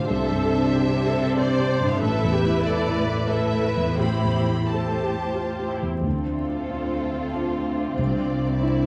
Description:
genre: cinematic, emotional film score for orchestra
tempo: 84-96 BPM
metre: 3/4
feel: rubato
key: A minor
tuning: A4 = 441 Hz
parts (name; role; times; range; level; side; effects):
- rich studio violin section; melody; 0.0-8.9 s; A4 to B5; -35 LUFS; equal; none
- rich studio violin section; second line; 0.0-8.9 s; D4 to C5; -32 LUFS; equal; none
- felt-muted upright piano; accompaniment; 0.0-8.9 s; A1 to C5; -29 LUFS; equal; none
- rich studio viola section; accompaniment; 0.0-8.9 s; C4 to C5; -31 LUFS; equal; none
- concert harp; arpeggios; 0.0-8.9 s; A2 to C5; -33 LUFS; equal; none
- rich studio cello section; bass; 0.0-8.9 s; C2 to C3; -29 LUFS; equal; none
- rich studio double bass section; bass; 6.1-8.6 s; C2 to D2; -33 LUFS; equal; none
room: wet scoring stage reverb, RT60 1.5 s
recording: vinyl crackle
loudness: -23 LUFS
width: mono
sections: 0.0-6.1 A section; 6.1-8.9 B section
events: none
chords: 0.1 Cadd9; 2.0 Asus2; 4.0 Am7; 6.1 Dm7; 8.0 Cadd9

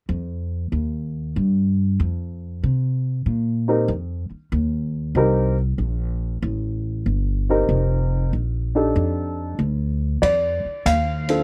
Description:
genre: jazz piano trio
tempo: 95 BPM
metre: 4/4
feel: swing 67% on 8ths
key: unclear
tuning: A4 = 436 Hz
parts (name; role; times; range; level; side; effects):
- upright bass; bass; 0.1-11.4 s; F1 to C3; -24 LUFS; equal; none
- dark upright piano; melody; 3.7-11.4 s; C4 to F5; -23 LUFS; equal; none
- open jazz drum kit; drums; 10.2-11.4 s; hi-hat, kick drum, ride cymbal; -34 LUFS; equal; none
room: little or no reverb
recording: dry, close 1970s-style studio recording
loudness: -22 LUFS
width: mono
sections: 0.1-10.2 A section; 10.2-11.4 B section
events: none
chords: 0.1 F7sus4; 9.0 F13; 10.2 Ebmaj7sus2

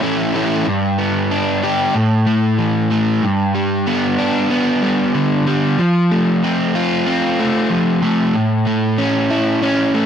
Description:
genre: rock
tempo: 94 BPM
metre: 4/4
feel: straight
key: unclear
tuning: A4 = 439 Hz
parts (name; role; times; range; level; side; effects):
- crunchy overdriven guitar; solo; 0.0-10.1 s; G2 to G4; -14 LUFS; equal; none
room: light reverb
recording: dry, close 1970s-style studio recording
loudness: -14 LUFS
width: side -8 dB against mid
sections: 0.7-10.1 A section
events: none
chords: 0.0 A; 0.7 G; 2.0 A5; 3.2 G; 5.8 F; 8.4 A

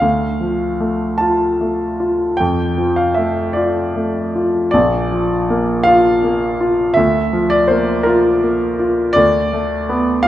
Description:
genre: classical, romantic nocturne for solo piano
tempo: 50-56 BPM (dotted quarters)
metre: 12/8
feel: rubato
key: D minor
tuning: A4 = 440 Hz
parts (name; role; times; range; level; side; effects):
- warm grand piano; solo; 0.0-10.3 s; Bb1 to A5; -14 LUFS; equal; none
room: moderate scoring stage reverb, RT60 2.0 s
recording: none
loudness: -14 LUFS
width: side -13 dB against mid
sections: 0.0-10.3 A section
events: none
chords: 0.0 Dm; 2.4 Dm/F; 4.7 Bb; 7.0 Bb/D; 9.2 Bm7/D

